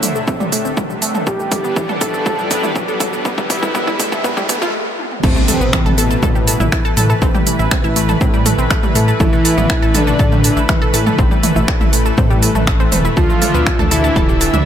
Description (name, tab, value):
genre	melodic techno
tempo	121 BPM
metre	4/4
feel	straight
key	A minor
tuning	A4 = 438 Hz
part	lush unison pad	sustained chords	0.0-14.7 s	D3 to E5	-22 LUFS	left 1 dB	chorus, sidechain pumping
part	wide unison pluck	arpeggios	0.0-14.6 s	E3 to A5	-21 LUFS	equal	sidechain pumping, tape echo
part	dark detuned saw bass	bass	0.0-14.6 s	D1 to A2	-18 LUFS	equal	sidechain pumping
part	overtone-sweeping drone	drone	0.0-4.7 s	A2 to C3	-32 LUFS	left 1 dB	none
part	techno drum kit	drums	0.0-14.6 s	crash cymbal, finger snaps, hi-hat, shaker, toms	-20 LUFS	right 2 dB	sidechain pumping on hats, sidechain pumping on perc, sidechain pumping on toms, sidechain pumping on cymbals
part	riser and impact	sound effects	0.5-7.2 s	none	-24 LUFS	equal	none
part	electronic kick drum	drums	0.3-14.3 s	none	-17 LUFS	equal	none
part	fat analog lead	melody	1.3-14.6 s	B3 to A4	-22 LUFS	equal	chorus, sidechain pumping, dub echo
part	big bright polysynth	second line	5.2-14.6 s	B2 to F3	-24 LUFS	equal	sidechain pumping, tape echo
room	little or no reverb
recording	high-pass filter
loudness	-12 LUFS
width	side -9 dB against mid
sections	0.0-5.2 A section; 5.2-14.7 B section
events	build-up 0.0-5.2; drum fill 0.0-4.7, 5.0; filter sweep on synth arpeggio sound 0.0-5.2; filter sweep on analog synth lead 0.0-5.2; riser 0.5-4.7; break 4.7-5.2; drop 5.2-14.7; impact 5.2-7.2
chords	0.0 Dsus2; 1.3 G; 5.2 Amadd9; 13.2 Dmadd9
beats	0.28 0.77 | 1.27 1.76 2.26 2.76 | 3.25 3.75 4.24 4.74 | 5.24 5.73 6.23 6.72 | 7.22 7.71 8.21 8.71 | 9.20 9.70 10.19 10.69 | 11.19 11.68 12.18 12.67 | 13.17 13.66 14.16